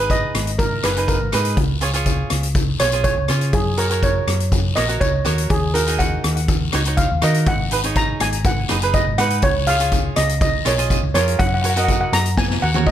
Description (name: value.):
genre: calypso.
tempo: 122 BPM.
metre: 4/4.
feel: straight.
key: F# major.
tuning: A4 = 440 Hz.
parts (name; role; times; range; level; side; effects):
steel pan; melody; 0.0-12.9 s; G#4 to A#5; -22 LUFS; right 1 dB; ping-pong delay.
cavaquinho; accompaniment; 0.0-12.9 s; D#4 to D#5; -24 LUFS; right 5 dB; none.
hollow-body short-scale fingered electric bass; bass; 0.0-12.9 s; F#1 to D#3; -21 LUFS; equal; none.
street-band drum kit; drums; 0.1-12.9 s; hi-hat, kick drum, rim click, snare drum, toms; -21 LUFS; left 1 dB; none.
guiro; percussion; 0.1-12.9 s; none; -31 LUFS; left 6 dB; none.
room: light reverb.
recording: none.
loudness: -16 LUFS.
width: side -11 dB against mid.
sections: 0.0-12.9 A section.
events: steel pan solo 0.0-12.9; drum fill 12.4-12.9.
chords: 0.0 G#m7; 1.6 C#7; 3.5 F#; 5.5 D#m7; 7.5 G#m7; 9.4 C#7; 11.4 F#.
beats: 0.10 0.59 1.08 | 1.57 2.07 2.56 3.05 | 3.54 4.03 4.53 5.02 | 5.51 6.00 6.49 6.98 | 7.47 7.96 8.46 8.95 | 9.44 9.93 10.42 10.91 | 11.40 11.89 12.38 12.87.